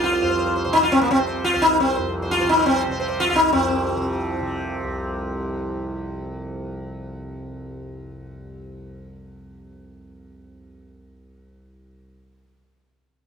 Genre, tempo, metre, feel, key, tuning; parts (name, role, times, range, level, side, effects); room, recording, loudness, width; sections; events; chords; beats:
indian classical, Hindustani; 174 BPM; 5/4; straight; A4 = 438 Hz
sitar; melody; 0.0-6.7 s; Bb3 to C5; -19 LUFS; equal
tanpura; drone; 0.0-12.0 s; C2 to C3; -29 LUFS; equal
light reverb; close, detailed microphones; -19 LUFS; side -6 dB against mid
0.0-3.5 A section; 3.5-5.2 B section
speeding up 0.0-5.2
| 0.04 0.39 0.74 1.09 1.44 | 1.79 2.14 2.48 2.83 3.18 | 3.52 3.86 4.21 4.55 4.89